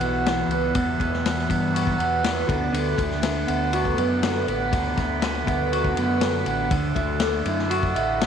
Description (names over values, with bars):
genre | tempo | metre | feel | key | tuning
psychedelic rock | 120 BPM | 4/4 | straight | unclear | A4 = 440 Hz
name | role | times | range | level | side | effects
combo organ | sustained chords | 0.0-8.3 s | F#3 to B5 | -30 LUFS | right 5 dB | lush chorus
electric guitar through a small old amp | riff | 0.0-8.3 s | E2 to F#4 | -23 LUFS | right 1 dB | phaser
growling fingered electric bass | bass | 0.0-8.3 s | A1 to G2 | -29 LUFS | equal | overdrive
vintage drum kit | drums | 0.0-8.3 s | kick drum, ride cymbal, snare drum | -27 LUFS | left 4 dB | none
room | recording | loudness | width
moderate echo chamber reverb, RT60 1.4 s, small room ambience | 1960s-style stereo | -21 LUFS | side -7 dB against mid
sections
0.0-8.3 A section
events
none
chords
0.0 Emadd9; 2.5 Bm7; 6.7 Dadd9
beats
0.26 | 0.75 1.25 1.75 2.25 | 2.74 3.24 3.74 4.24 | 4.73 5.23 5.73 6.23 | 6.72 7.22 7.72 8.22